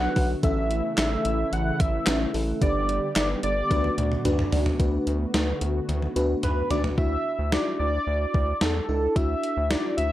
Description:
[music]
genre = synth-pop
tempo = 110 BPM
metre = 4/4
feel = straight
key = D major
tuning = A4 = 440 Hz
[part]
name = octave-doubled lead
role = melody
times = 0.0-10.1 s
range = A4 to F#5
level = -28 LUFS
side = equal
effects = chorus, tape echo
[part]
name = FM electric piano with soft pad layer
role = accompaniment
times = 0.0-10.1 s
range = C#4 to D5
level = -29 LUFS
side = left 1 dB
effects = chorus, tremolo
[part]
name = warm analog pad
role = sustained chords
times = 0.0-7.0 s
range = C#3 to G4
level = -32 LUFS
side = right 1 dB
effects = chorus
[part]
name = round analog bass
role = bass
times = 0.0-10.1 s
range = G1 to E2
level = -27 LUFS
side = equal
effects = none
[part]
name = gated 80s digital drum machine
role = drums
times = 0.2-10.1 s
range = handclaps, hi-hat, kick drum, snare drum, toms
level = -26 LUFS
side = equal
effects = gated reverb, gated reverb snare
[sound]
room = little or no reverb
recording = dry, gritty hardware recording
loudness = -22 LUFS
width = side -14 dB against mid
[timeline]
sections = 0.0-4.8 A section; 4.8-7.0 B section; 7.0-10.1 C section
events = drum fill 3.7-4.8, 5.9-7.0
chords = 0.4 A; 2.6 G; 3.7 D6; 7.0 Dadd9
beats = | 0.43 0.98 1.52 2.07 | 2.62 3.16 3.71 4.25 | 4.80 5.34 5.89 6.43 | 6.98 7.52 8.07 8.62 | 9.16 9.71

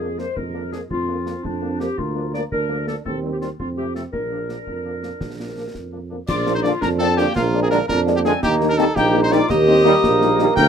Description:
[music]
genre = military-style march for wind band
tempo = 112 BPM (dotted quarters)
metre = 6/8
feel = straight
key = Bb major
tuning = A4 = 440 Hz
[part]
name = warm cornet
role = melody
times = 0.0-10.7 s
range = C4 to G5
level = -25 LUFS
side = right 1 dB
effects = none
[part]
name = clear euphonium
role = second line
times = 0.0-10.7 s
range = Ab3 to Eb4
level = -25 LUFS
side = right 3 dB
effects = none
[part]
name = mellow woodwind section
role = second line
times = 0.0-10.7 s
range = Ab3 to D5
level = -24 LUFS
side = left 3 dB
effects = none
[part]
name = mellow French horn section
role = accompaniment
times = 0.0-10.5 s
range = Bb2 to Eb4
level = -25 LUFS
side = left 4 dB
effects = none
[part]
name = mellow tuba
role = bass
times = 0.0-10.7 s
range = Bb1 to F2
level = -23 LUFS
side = right 4 dB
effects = none
[part]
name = concert snare drum, concert bass drum and clash cymbals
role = drums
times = 0.2-10.7 s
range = none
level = -30 LUFS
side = left 1 dB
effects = none
[part]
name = bright wooden piccolo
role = second line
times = 6.3-10.7 s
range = F5 to G6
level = -24 LUFS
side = left 5 dB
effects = none
[part]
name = clear trombone section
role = sustained chords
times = 6.7-10.5 s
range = D3 to Ab3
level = -25 LUFS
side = right 4 dB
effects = none
[sound]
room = little or no reverb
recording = none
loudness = -17 LUFS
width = side -7 dB against mid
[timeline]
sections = 0.0-6.3 A section; 6.3-10.7 B section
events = none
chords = 0.0 Bb7/F; 2.0 Bb/D; 3.1 Cm/Eb; 3.6 F; 4.1 Bb; 7.4 Bb7; 8.4 Eb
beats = 0.36 | 0.90 1.44 | 1.98 2.52 | 3.06 3.59 | 4.13 4.67 | 5.21 5.74 | 6.28 6.82 | 7.35 7.89 | 8.42 8.96 | 9.49 10.03 | 10.57

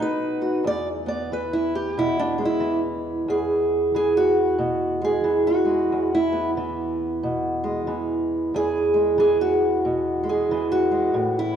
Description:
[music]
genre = acoustic country blues, solo or duo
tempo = 91 BPM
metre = 4/4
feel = swing 61% on 8ths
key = E major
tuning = A4 = 440 Hz
[part]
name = fingerpicked steel-string acoustic guitar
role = solo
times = 0.0-11.6 s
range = E2 to D5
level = -20 LUFS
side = right 1 dB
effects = none
[sound]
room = wet concert hall reverb, RT60 2.2 s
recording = recorded in a church or concert hall, small room ambience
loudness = -20 LUFS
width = side -8 dB against mid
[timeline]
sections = 0.6-11.6 A section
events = steel-string acoustic guitar solo 0.6-11.6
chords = 0.0 B; 0.6 E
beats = | 0.65 1.31 1.97 2.63 | 3.29 3.95 4.60 5.26 | 5.92 6.58 7.23 7.89 | 8.54 9.20 9.86 10.51 | 11.16

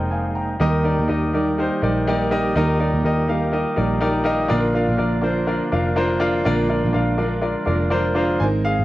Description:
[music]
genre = piano-driven pop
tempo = 123 BPM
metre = 4/4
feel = swing 56% on 16ths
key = unclear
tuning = A4 = 439 Hz
[part]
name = clear concert grand piano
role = accompaniment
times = 0.0-8.8 s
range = Ab2 to Bb5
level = -21 LUFS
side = left 1 dB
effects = none
[part]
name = tonewheel organ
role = sustained chords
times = 0.0-8.4 s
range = C3 to G4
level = -29 LUFS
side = right 1 dB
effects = none
[part]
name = vintage muted picked electric bass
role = bass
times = 0.0-8.8 s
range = F1 to Eb2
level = -24 LUFS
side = equal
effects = none
[part]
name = fingerpicked steel-string acoustic guitar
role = riff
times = 0.6-8.8 s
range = Bb2 to Bb4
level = -24 LUFS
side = right 3 dB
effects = none
[sound]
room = moderate large studio reverb, RT60 1.1 s, small room ambience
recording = worn, warbling old tape, cassette tape, warbly pitch drift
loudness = -18 LUFS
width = side -16 dB against mid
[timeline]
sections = 0.0-8.4 A section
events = grand piano fill 3.8-4.5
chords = 0.0 Abadd9; 0.6 Eb; 4.5 Bb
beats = 0.12 | 0.60 1.09 1.58 2.07 | 2.56 3.04 3.53 4.02 | 4.51 5.00 5.48 5.97 | 6.46 6.95 7.44 7.92 | 8.41

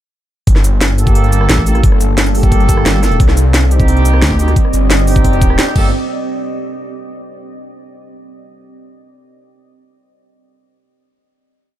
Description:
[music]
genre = dark technical drum and bass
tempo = 176 BPM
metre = 4/4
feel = straight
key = G minor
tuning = A4 = 437 Hz
[part]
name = deep dark ambient pad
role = sustained chords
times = 1.3-5.9 s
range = G3 to Eb5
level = -21 LUFS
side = right 1 dB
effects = chorus, built-in reverb, sidechain pumping
[part]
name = wide detuned saw bass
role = bass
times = 0.5-5.9 s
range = G1 to C2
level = -13 LUFS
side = equal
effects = chorus, overdrive, sidechain pumping
[part]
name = drum and bass drum kit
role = drums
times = 0.5-5.8 s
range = crash cymbal, hi-hat, rim click, shaker, snare drum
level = -17 LUFS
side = equal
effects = none
[part]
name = electronic kick drum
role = drums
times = 0.5-5.8 s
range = none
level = -12 LUFS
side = equal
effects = overdrive
[part]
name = warm brass ensemble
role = stabs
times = 1.0-5.9 s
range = Bb3 to A4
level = -19 LUFS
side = right 3 dB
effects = ping-pong delay
[part]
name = vowel-sweep wobble bass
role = bass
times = 1.5-4.5 s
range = G1 to D2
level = -13 LUFS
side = equal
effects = chorus
[sound]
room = digital ambience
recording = dark, warm production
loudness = -9 LUFS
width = side -13 dB against mid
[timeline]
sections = 0.5-5.9 drop; 5.9-7.3 final hit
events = drop 0.5-5.9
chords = 0.5 Gmadd9; 3.2 Cm; 5.8 Gmadd9; 5.9 N.C.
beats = | 0.47 0.81 1.15 1.50 | 1.84 2.18 2.52 2.86 | 3.20 3.54 3.88 4.22 | 4.56 4.90 5.25 5.59

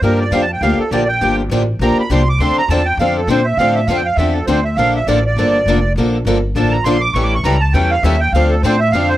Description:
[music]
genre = acoustic string swing (jazz manouche)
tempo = 202 BPM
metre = 4/4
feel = swing 59% on 8ths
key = D minor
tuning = A4 = 440 Hz
[part]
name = accordion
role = second line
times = 0.0-9.2 s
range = A4 to D6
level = -17 LUFS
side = right 2 dB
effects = light tremolo tuning
[part]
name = picked steel-string acoustic guitar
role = accompaniment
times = 0.0-9.1 s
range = D3 to A4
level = -21 LUFS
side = right 3 dB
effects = none
[part]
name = picked swing-style acoustic guitar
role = accompaniment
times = 0.0-9.1 s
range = D3 to A4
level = -19 LUFS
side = left 6 dB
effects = none
[part]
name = upright bass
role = bass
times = 0.0-9.2 s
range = F1 to Bb2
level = -17 LUFS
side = equal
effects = none
[sound]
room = small room ambience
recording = dry, close 1970s-style studio recording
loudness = -12 LUFS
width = side -14 dB against mid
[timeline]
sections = 0.0-9.2 A section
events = accordion solo 0.0-9.2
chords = 0.0 Gm9; 2.4 Dm9; 4.8 Bbmaj7; 7.2 A7; 8.3 Dm7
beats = | 0.02 0.32 0.62 0.92 | 1.21 1.51 1.81 2.10 | 2.40 2.70 3.00 3.29 | 3.59 3.89 4.18 4.48 | 4.78 5.07 5.37 5.67 | 5.96 6.26 6.56 6.86 | 7.15 7.45 7.75 8.04 | 8.34 8.64 8.93

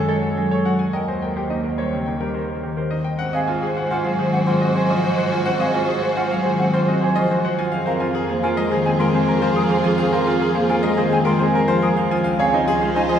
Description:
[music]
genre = classical, minimalist pattern music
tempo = 106 BPM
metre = 4/4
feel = straight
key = Ab mixolydian from 3.2 s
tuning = A4 = 440 Hz
[part]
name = bright grand piano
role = melody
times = 0.0-13.2 s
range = G4 to Ab5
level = -25 LUFS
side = left 4 dB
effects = none
[part]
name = marimba with soft mallets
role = accompaniment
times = 0.0-13.2 s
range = Db3 to C4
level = -22 LUFS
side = equal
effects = none
[part]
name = clear baby grand piano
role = arpeggios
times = 0.0-13.2 s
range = C4 to Db5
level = -23 LUFS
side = right 3 dB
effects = none
[part]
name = rich cello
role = bass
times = 0.0-13.2 s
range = Db2 to Ab2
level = -28 LUFS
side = right 1 dB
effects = none
[part]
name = hollow concert flute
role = arpeggios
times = 0.9-13.0 s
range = F5 to Eb6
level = -29 LUFS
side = left 1 dB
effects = none
[part]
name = mellow alto flute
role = second line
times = 3.2-13.2 s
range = F4 to C5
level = -27 LUFS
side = right 2 dB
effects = none
[part]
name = clear studio string section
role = sustained chords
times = 3.2-13.2 s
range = F4 to C5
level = -29 LUFS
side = equal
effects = none
[sound]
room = wet church reverb, RT60 3.4 s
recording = heard from further back in the room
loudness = -17 LUFS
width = side -9 dB against mid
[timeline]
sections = 0.0-3.2 A section; 3.2-13.2 B section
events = none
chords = 0.0 Gbmadd9; 0.9 Eb; 3.2 Ab7; 7.7 Fm; 12.3 Dbmaj7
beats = 0.37 | 0.93 1.50 2.07 2.63 | 3.20 3.76 4.33 4.90 | 5.46 6.03 6.59 7.16 | 7.73 8.29 8.86 9.42 | 9.99 10.56 11.12 11.69 | 12.26 12.82

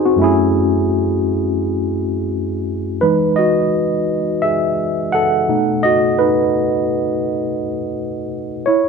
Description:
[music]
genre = R&B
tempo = 85 BPM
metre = 4/4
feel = swing 58% on 16ths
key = unclear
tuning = A4 = 437 Hz
[part]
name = tine electric piano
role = solo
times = 0.0-8.9 s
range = F#2 to F#5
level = -15 LUFS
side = equal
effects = medium stereo tremolo
[sound]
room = moderate stone room reverb, RT60 1.1 s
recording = band playing live in one room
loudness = -15 LUFS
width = side -5 dB against mid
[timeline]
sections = 0.0-3.0 A section; 3.0-8.9 B section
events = tine electric piano solo 3.0-8.9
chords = 0.2 F#m9; 3.0 Emaj9; 5.5 B7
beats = | 0.19 0.90 1.60 2.31 | 3.02 3.72 4.43 5.13 | 5.84 6.55 7.25 7.96 | 8.66

